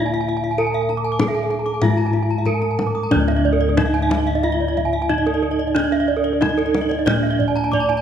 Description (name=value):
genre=Balinese gamelan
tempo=91-101 BPM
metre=4/4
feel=straight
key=D pelog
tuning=A4 = 436 Hz
part: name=gamelan-type bronze metallophone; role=melody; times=0.0-8.0 s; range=D4 to D5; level=-21 LUFS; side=right 2 dB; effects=none
part: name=gamelan-type bronze metallophone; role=arpeggios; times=0.0-8.0 s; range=D5 to Eb6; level=-27 LUFS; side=left 4 dB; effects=none
part: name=gamelan-type bossed gongs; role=bass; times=0.0-8.0 s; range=D2 to Bb4-40c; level=-22 LUFS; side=left 2 dB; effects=none
part: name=gamelan-type bronze metallophone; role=arpeggios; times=0.1-8.0 s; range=Bb4-40c to D6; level=-25 LUFS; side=right 6 dB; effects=none
part: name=kendang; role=percussion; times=0.9-8.0 s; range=none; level=-26 LUFS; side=left 3 dB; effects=none
room=moderate scoring stage reverb, RT60 2.0 s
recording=none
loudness=-17 LUFS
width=side -8 dB against mid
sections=0.0-3.1 A section; 3.1-8.0 B section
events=none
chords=none